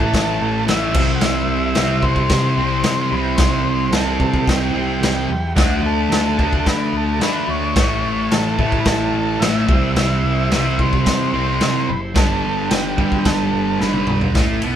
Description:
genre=garage rock duo or trio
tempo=109 BPM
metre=4/4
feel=straight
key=unclear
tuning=A4 = 440 Hz
part: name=overdriven combo organ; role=melody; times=0.0-14.2 s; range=F#4 to F#5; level=-24 LUFS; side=equal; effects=none
part: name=combo organ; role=sustained chords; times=0.0-14.8 s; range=D4 to D5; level=-29 LUFS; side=left 2 dB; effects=none
part: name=fuzz guitar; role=riff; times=0.0-14.8 s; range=G2 to D4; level=-20 LUFS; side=right 1 dB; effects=distortion
part: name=growling picked electric bass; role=bass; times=0.0-14.8 s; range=F#1 to D3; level=-24 LUFS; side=equal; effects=overdrive
part: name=raw garage drum kit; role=drums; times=0.0-14.8 s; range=crash cymbal, kick drum, ride cymbal, snare drum, toms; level=-20 LUFS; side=equal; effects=none
room=moderate studio reverb, RT60 0.7 s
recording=band playing live in one room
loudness=-15 LUFS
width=side -10 dB against mid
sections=0.0-14.4 A section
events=drum fill 13.8-14.4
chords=0.0 A; 0.9 C; 5.6 D; 7.8 A; 9.7 C; 12.2 G

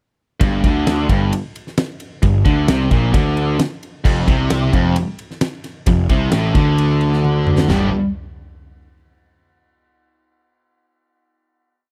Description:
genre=classic rock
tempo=132 BPM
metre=4/4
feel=straight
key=unclear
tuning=A4 = 440 Hz
part: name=overdriven semi-hollow guitar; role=riff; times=0.4-7.9 s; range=F2 to G4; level=-23 LUFS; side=equal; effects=none
part: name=tight distorted guitar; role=riff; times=0.4-7.9 s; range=F2 to G4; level=-25 LUFS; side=equal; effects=distortion
part: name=fuzz picked electric bass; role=bass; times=0.4-7.9 s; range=F1 to D2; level=-21 LUFS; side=equal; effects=overdrive
part: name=huge arena drum kit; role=drums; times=0.4-7.8 s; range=china cymbal, crash cymbal, kick drum, ride cymbal, snare drum, toms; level=-21 LUFS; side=equal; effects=none
part: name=thick fuzz guitar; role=riff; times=4.1-7.9 s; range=F2 to G3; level=-26 LUFS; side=equal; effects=distortion
room=studio reverb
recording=dry, close 1970s-style studio recording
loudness=-17 LUFS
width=mono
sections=0.4-7.7 riff; 7.7-9.5 final chord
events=drum fill 7.2-7.7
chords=0.4 G5; 4.1 F5; 7.7 G

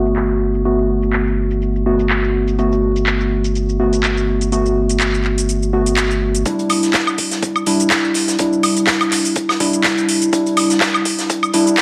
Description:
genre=deep house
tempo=124 BPM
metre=4/4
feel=swing 54% on 16ths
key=E minor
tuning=A4 = 439 Hz
part: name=warm analog keys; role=stabs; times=0.0-11.8 s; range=G3 to F#4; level=-19 LUFS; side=equal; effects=chorus, sidechain pumping, analog delay
part: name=rubbery square bass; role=bass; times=0.0-6.4 s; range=G1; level=-22 LUFS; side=equal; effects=none
part: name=house drum kit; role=drums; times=0.1-11.8 s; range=handclaps, hi-hat, shaker, woodblock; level=-21 LUFS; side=equal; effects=none
part: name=big rock drum kit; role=drums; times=6.5-11.8 s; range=hi-hat, snare drum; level=-28 LUFS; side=equal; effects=sidechain pumping on hats, high-pass filter on hats, high-pass filter on snare, high-pass filter on room
part: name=electronic kick drum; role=drums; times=6.5-11.8 s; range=none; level=-26 LUFS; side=equal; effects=high-pass filter on kick, high-pass filter on room
room=moderate digital room reverb, RT60 1.1 s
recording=dry, gritty hardware recording, vinyl crackle, high-pass filter, low-pass filter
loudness=-17 LUFS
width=mono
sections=0.0-6.5 A section; 6.5-11.8 B section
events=filter sweep 0.0-6.5; build-up 6.5-11.8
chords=0.0 Gmaj9; 6.5 Em7

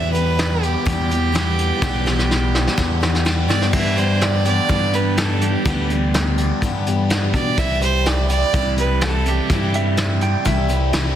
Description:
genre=folk rock and heartland rock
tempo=125 BPM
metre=4/4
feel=straight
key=G major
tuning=A4 = 440 Hz
part: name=clear fiddle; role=melody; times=0.0-9.7 s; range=G4 to E5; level=-23 LUFS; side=right 5 dB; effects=none
part: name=picked steel-string acoustic guitar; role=accompaniment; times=0.0-11.2 s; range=E2 to G4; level=-26 LUFS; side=left 7 dB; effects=none
part: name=overdriven electric guitar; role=riff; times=0.0-11.2 s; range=E2 to G4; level=-25 LUFS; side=right 2 dB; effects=phaser
part: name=deep dub picked electric bass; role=bass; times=0.0-11.2 s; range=B1 to B2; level=-20 LUFS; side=equal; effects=none
part: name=soft brush drum kit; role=drums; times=0.1-11.1 s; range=crash cymbal, hi-hat, kick drum, snare drum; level=-22 LUFS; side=equal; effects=soft clipping on kick, soft clipping on snare
part: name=clean lap steel guitar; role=second line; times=9.8-10.9 s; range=E5 to G5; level=-26 LUFS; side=right 6 dB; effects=slapback echo
room=light reverb, studio reverb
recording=dense, heavily limited modern master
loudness=-16 LUFS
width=side -10 dB against mid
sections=0.0-3.7 A section; 3.7-11.2 A section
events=drum fill 1.8-3.7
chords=0.0 Em; 3.7 G6; 7.6 C

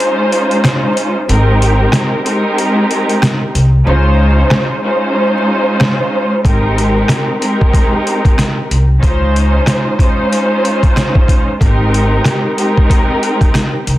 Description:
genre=hip hop, boom-bap hip-hop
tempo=93 BPM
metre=4/4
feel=swing 59% on 16ths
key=Ab major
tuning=A4 = 440 Hz
part: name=warm studio string section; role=accompaniment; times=0.0-13.9 s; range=Ab3 to C5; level=-14 LUFS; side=equal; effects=high-pass filter, low-pass filter
part: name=trip hop sampler-style drum kit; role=drums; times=0.0-14.0 s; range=hi-hat, kick drum, rim click, snare drum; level=-13 LUFS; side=equal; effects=none
part: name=upright bass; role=bass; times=1.3-14.0 s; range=Ab1 to Db2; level=-12 LUFS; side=equal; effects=none
room=small room ambience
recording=dense, heavily limited modern master, vinyl crackle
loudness=-10 LUFS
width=side -15 dB against mid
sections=0.0-14.0 A section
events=break 0.0-6.4; hi-hats muted 3.9-6.4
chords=0.0 Dbmaj7; 1.3 Abmaj7; 3.9 Dbmaj7; 6.4 Abmaj7; 9.0 Dbmaj7; 11.6 Abmaj7

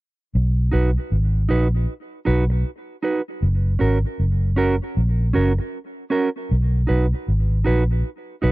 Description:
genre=roots reggae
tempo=78 BPM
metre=4/4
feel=swing 64% on 16ths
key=B major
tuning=A4 = 440 Hz
part: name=vintage muted fingered electric bass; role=bass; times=0.4-8.5 s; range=F#1 to B1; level=-18 LUFS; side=equal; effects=none
part: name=mellow electric guitar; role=accompaniment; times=0.7-8.5 s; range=C#4 to B4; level=-24 LUFS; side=right 3 dB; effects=tape echo
room=little or no reverb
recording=dry, close 1970s-style studio recording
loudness=-18 LUFS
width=side -19 dB against mid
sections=0.3-8.5 A section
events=none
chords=0.3 B; 3.4 F#; 6.5 B

